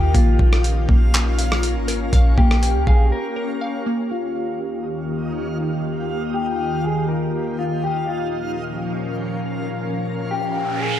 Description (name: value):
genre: hip hop, atmospheric cloud-rap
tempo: 121 BPM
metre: 4/4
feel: half-time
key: Bb dorian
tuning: A4 = 442 Hz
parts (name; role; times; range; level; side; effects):
- electric guitar at the edge of break-up; melody; 0.0-11.0 s; F4 to Bb4; -26 LUFS; left 2 dB; low-pass filter, digital delay
- ethereal airy pad; sustained chords; 0.0-11.0 s; Eb2 to F5; -25 LUFS; left 1 dB; ensemble chorus, built-in reverb, sidechain pumping, low-pass filter
- glassy wavetable pluck; arpeggios; 0.0-4.1 s; Eb3 to G5; -27 LUFS; right 1 dB; chorus, low-pass filter, digital delay
- soft 808-style bass; bass; 0.0-3.1 s; Ab1 to Eb2; -18 LUFS; equal; none
- backwards swelling texture; texture; 0.0-11.0 s; Db4 to F5; -33 LUFS; right 2 dB; built-in reverb
- dusty soul sampler-style drum kit; drums; 0.1-3.0 s; handclaps, hi-hat, kick drum, rim click; -18 LUFS; equal; overdrive
- noise sweep; sound effects; 10.3-11.0 s; none; -27 LUFS; right 4 dB; none
room: little or no reverb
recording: none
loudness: -18 LUFS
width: side -11 dB against mid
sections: 0.0-4.1 A section; 4.1-11.0 B section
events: break 3.1-4.1; filter sweep 4.1-11.0; noise sweep 10.3-11.0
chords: 0.1 Bbm; 4.1 Ebadd9; 8.1 Bbm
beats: | 0.15 0.64 1.14 1.63 | 2.13 2.62 3.12 3.62 | 4.11 4.61 5.10 5.60 | 6.10 6.59 7.09 7.58 | 8.08 8.57 9.07 9.57 | 10.06 10.56